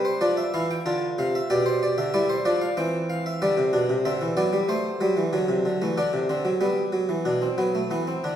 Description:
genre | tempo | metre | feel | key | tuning
classical, baroque-style 3-part fugue for harpsichord | 94 BPM | 3/4 | straight | unclear | A4 = 442 Hz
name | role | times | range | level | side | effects
harpsichord | solo | 0.0-8.4 s | B2 to A5 | -22 LUFS | equal | none
room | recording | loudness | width
wet recital hall reverb, RT60 1.7 s | heard from further back in the room | -22 LUFS | side -10 dB against mid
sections
0.0-7.3 A section; 7.3-8.4 B section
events
none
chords
0.0 C; 0.9 Dm7; 1.5 G7/B; 2.8 C/E; 3.4 G; 4.7 Am7; 5.3 D7; 6.6 G; 7.3 Bmadd11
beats
0.23 0.87 | 1.51 2.15 2.79 | 3.43 4.07 4.71 | 5.34 5.98 6.62 | 7.27 7.92

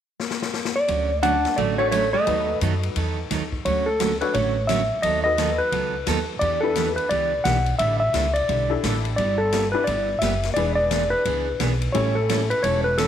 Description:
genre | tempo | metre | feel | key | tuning
country, western swing | 174 BPM | 4/4 | swing 63% on 8ths | D major | A4 = 440 Hz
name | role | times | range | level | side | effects
swinging big-band drum kit | drums | 0.2-13.1 s | hi-hat, kick drum, ride cymbal, snare drum | -30 LUFS | left 8 dB | none
clean lap steel guitar | melody | 0.8-13.1 s | A4 to F#5 | -22 LUFS | left 1 dB | none
picked steel-string acoustic guitar | accompaniment | 0.9-13.1 s | D3 to A4 | -28 LUFS | right 10 dB | none
upright bass | bass | 0.9-13.1 s | E1 to F#2 | -26 LUFS | equal | none
archtop guitar, miked and amplified | second line | 1.2-2.6 s | A3 to D4 | -26 LUFS | right 10 dB | none
honky-tonk upright piano | accompaniment | 1.8-12.9 s | C#4 to C#5 | -30 LUFS | left 10 dB | none
room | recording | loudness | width
moderate echo chamber reverb, RT60 1.7 s, small room ambience | 1960s-style stereo with parts hard left and right | -20 LUFS | side -9 dB against mid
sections
0.9-3.7 A section; 3.7-13.1 B section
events
drum fill 0.2-0.9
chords
0.0 N.C.; 0.9 Dmaj7; 2.3 B7/D#; 3.7 Dmaj7; 5.0 B7/D#; 6.4 Em7; 7.8 A7sus4; 9.2 G6; 10.6 E7; 11.9 A7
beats
0.20 0.54 | 0.89 1.24 1.58 1.93 | 2.27 2.62 2.96 3.31 | 3.65 4.00 4.34 4.69 | 5.03 5.38 5.72 6.07 | 6.41 6.76 7.10 7.45 | 7.79 8.14 8.49 8.83 | 9.18 9.52 9.87 10.21 | 10.56 10.91 11.25 11.60 | 11.94 12.29 12.63 12.98

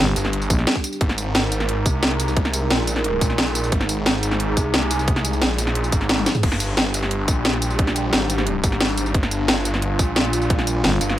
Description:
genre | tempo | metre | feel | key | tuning
dark technical drum and bass | 177 BPM | 4/4 | straight | G phrygian | A4 = 440 Hz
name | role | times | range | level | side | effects
dark analog pad | sustained chords | 0.0-11.2 s | G3 to Bb4 | -26 LUFS | equal | chorus, phaser, sidechain pumping
growling FM bass | bass | 0.0-0.7, 10.8-11.0 s | G1 to Bb1 | -20 LUFS | equal | none
snarling distorted saw bass | bass | 0.2-11.2 s | G1 to C2 | -23 LUFS | equal | distortion, overdrive
drum and bass drum kit | drums | 0.2-11.2 s | crash cymbal, hi-hat, snare drum, tambourine, toms | -21 LUFS | equal | overdrive
electronic kick drum | drums | 0.5-10.6 s | none | -20 LUFS | equal | overdrive
room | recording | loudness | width
little or no reverb | none | -18 LUFS | side -13 dB against mid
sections
0.0-11.2 A section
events
drum fill 6.2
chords
0.0 Gm; 1.0 Ab; 6.4 Gm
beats
0.33 0.67 | 1.01 1.35 1.69 2.03 | 2.37 2.70 3.04 3.38 | 3.72 4.06 4.40 4.74 | 5.08 5.42 5.75 6.09 | 6.43 6.77 7.11 7.45 | 7.79 8.13 8.47 8.81 | 9.14 9.48 9.82 10.16 | 10.50 10.84 11.18

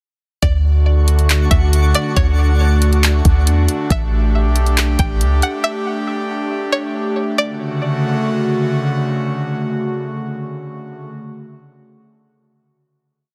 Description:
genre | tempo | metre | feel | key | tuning
hip hop, atmospheric cloud-rap | 138 BPM | 4/4 | half-time | D major | A4 = 440 Hz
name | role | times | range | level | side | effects
string-like resonator pluck | melody | 0.4-8.6 s | C#5 to G5 | -25 LUFS | equal | chorus, tape echo
airy breathy pad | sustained chords | 0.4-11.1 s | C#3 to G4 | -22 LUFS | equal | chorus, sidechain pumping
soft 808-style bass | bass | 0.4-5.4 s | A1 to E2 | -16 LUFS | equal | none
smooth R&B drum kit | drums | 0.4-5.5 s | handclaps, hi-hat, kick drum | -19 LUFS | equal | none
twinkling granular texture | texture | 1.0-3.9 s | D4 to C#6 | -31 LUFS | equal | built-in reverb
room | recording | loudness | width
little or no reverb | dense, heavily limited modern master | -17 LUFS | mono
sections
0.4-7.4 verse; 7.4-10.9 final chord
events
none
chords
0.4 Dmaj7; 3.9 A7(no3); 7.4 Dmaj7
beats
| 0.43 0.86 1.30 1.73 | 2.17 2.60 3.04 3.47 | 3.90 4.34 4.77 5.21 | 5.64 6.08 6.51 6.95 | 7.38 7.82 8.25 8.69 | 9.12 9.56 9.99 10.43

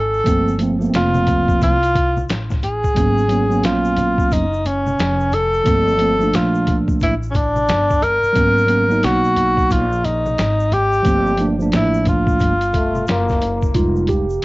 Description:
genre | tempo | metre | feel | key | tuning
hip hop, jazz-hop | 89 BPM | 4/4 | swing 64% on 16ths | unclear | A4 = 441 Hz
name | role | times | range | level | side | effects
breathy tenor saxophone | melody | 0.0-13.4 s | Db4 to Bb4 | -18 LUFS | equal | cassette tape
upright bass | bass | 0.0-14.4 s | F1 to C2 | -22 LUFS | equal | none
egg shaker and congas | percussion | 0.1-14.4 s | none | -30 LUFS | left 1 dB | none
mellow tine electric piano | accompaniment | 0.2-14.4 s | F3 to G4 | -18 LUFS | right 2 dB | cassette tape
lo-fi sampler-style drum kit | drums | 0.3-14.4 s | hi-hat, kick drum, snare drum | -20 LUFS | equal | none
breathy trombone | second line | 12.7-13.7 s | A3 to Bb3 | -22 LUFS | left 2 dB | cassette tape, tape echo
room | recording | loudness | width
small room ambience | home recording on cassette, nothing above 7.7 kHz | -14 LUFS | side -21 dB against mid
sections
0.0-13.7 A section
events
none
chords
0.3 Gm11; 3.0 Abm11; 5.7 Gm11; 8.4 Abm11; 11.1 Gm9; 13.7 Fm9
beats
| 0.27 0.94 1.61 2.29 | 2.96 3.64 4.31 4.99 | 5.66 6.33 7.01 7.68 | 8.36 9.03 9.71 10.38 | 11.05 11.73 12.40 13.07 | 13.75 14.42

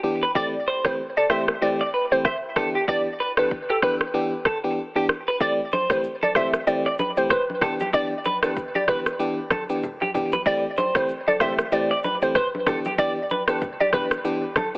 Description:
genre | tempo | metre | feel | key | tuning
afrobeats | 95 BPM | 4/4 | swing 58% on 16ths | E minor | A4 = 441 Hz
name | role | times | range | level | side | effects
FM electric piano | accompaniment | 0.0-14.8 s | E3 to G4 | -27 LUFS | equal | chorus
direct-recorded clean electric guitar | riff | 0.2-14.7 s | G4 to D5 | -26 LUFS | right 1 dB | lush chorus, digital delay
glassy wavetable pluck | melody | 0.4-14.1 s | A4 to E5 | -24 LUFS | equal | chorus, digital delay
afro-pop drum kit | drums | 0.4-14.8 s | kick drum, rim click, shaker | -25 LUFS | equal | none
congas | percussion | 5.7-14.7 s | none | -33 LUFS | equal | none
room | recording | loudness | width
light reverb | heavily compressed radio sound, telephone sound | -20 LUFS | side -26 dB against mid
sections
0.0-14.8 A section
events
break 0.0-5.4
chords
0.4 Am7; 2.6 Em7; 5.4 Am7; 7.6 Em7; 10.5 Am7; 12.7 Em7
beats
| 0.35 0.98 1.62 2.25 | 2.88 3.51 4.14 4.77 | 5.41 6.04 6.67 7.30 | 7.93 8.56 9.20 9.83 | 10.46 11.09 11.72 12.35 | 12.98 13.62 14.25

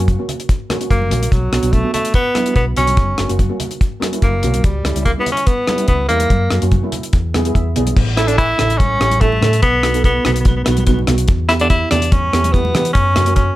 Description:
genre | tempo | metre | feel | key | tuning
calypso | 144 BPM | 4/4 | straight | unclear | A4 = 440 Hz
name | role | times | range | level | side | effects
warm tenor saxophone | melody | 0.0-13.6 s | F#3 to E4 | -17 LUFS | equal | none
steel pan | accompaniment | 0.0-13.5 s | G3 to F#5 | -22 LUFS | right 3 dB | none
hollow-body short-scale fingered electric bass | bass | 0.0-13.5 s | F#1 to E3 | -18 LUFS | equal | none
deep reggae drum kit | drums | 0.1-13.5 s | crash cymbal, hi-hat, kick drum, rim click | -17 LUFS | equal | none
congas | percussion | 0.1-13.3 s | none | -27 LUFS | right 1 dB | none
room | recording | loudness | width
light reverb | none | -13 LUFS | side -16 dB against mid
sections
0.0-8.0 A section; 8.0-13.6 B section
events
steel pan fill 7.1-8.0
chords
0.0 F#; 1.3 Bm; 3.0 F#; 4.6 C#dim; 6.3 F#; 7.1 E; 8.0 A; 9.6 B; 11.3 Em; 13.0 F#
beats
0.08 0.49 0.91 | 1.32 1.74 2.15 2.56 | 2.98 3.40 3.81 4.23 | 4.64 5.06 5.47 5.89 | 6.30 6.72 7.14 7.55 | 7.97 8.38 8.80 9.21 | 9.63 10.05 10.46 10.88 | 11.29 11.71 12.12 12.54 | 12.95 13.37

